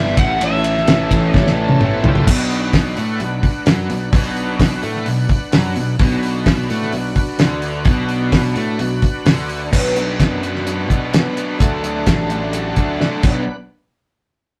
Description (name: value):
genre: classic rock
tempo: 129 BPM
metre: 4/4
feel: straight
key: B minor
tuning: A4 = 442 Hz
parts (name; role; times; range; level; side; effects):
- overdriven slide guitar; melody; 0.0-1.8 s; E5 to F#5; -23 LUFS; equal; none
- picked twelve-string acoustic guitar; accompaniment; 0.0-2.3, 9.7-13.4 s; A2 to A4; -27 LUFS; equal; none
- bright tonewheel organ; sustained chords; 0.0-13.6 s; B3 to F#5; -29 LUFS; equal; slow rotary speaker, overdrive, chorus vibrato
- fuzz guitar; riff; 0.0-9.7 s; G2 to E4; -30 LUFS; equal; none
- overdriven electric guitar; riff; 0.0-13.4 s; G2 to D4; -30 LUFS; equal; none
- sludgy distorted guitar; riff; 0.0-13.4 s; G2 to F#4; -26 LUFS; equal; overdrive
- fuzz fingered electric bass; bass; 0.0-13.4 s; G1 to B2; -27 LUFS; equal; overdrive
- damped 70s drum kit; drums; 0.1-13.3 s; crash cymbal, hi-hat, kick drum, ride cymbal, snare drum, toms; -19 LUFS; equal; none
room: moderate studio ambience, RT60 0.5 s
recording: rough rehearsal-room recording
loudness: -17 LUFS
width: mono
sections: 0.0-2.3 A section; 2.3-9.7 B section; 9.7-13.5 C section; 13.5-14.6 D section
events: drum fill 1.3-2.3, 13.0-13.5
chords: 0.2 A; 2.3 Bm; 11.6 D; 13.2 Bm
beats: | 0.40 0.87 1.33 1.80 | 2.26 2.73 3.20 3.66 | 4.13 4.59 5.06 5.53 | 5.99 6.46 6.92 7.39 | 7.86 8.32 8.79 9.26 | 9.72 10.19 10.66 11.13 | 11.60 12.06 12.53 13.00 | 13.47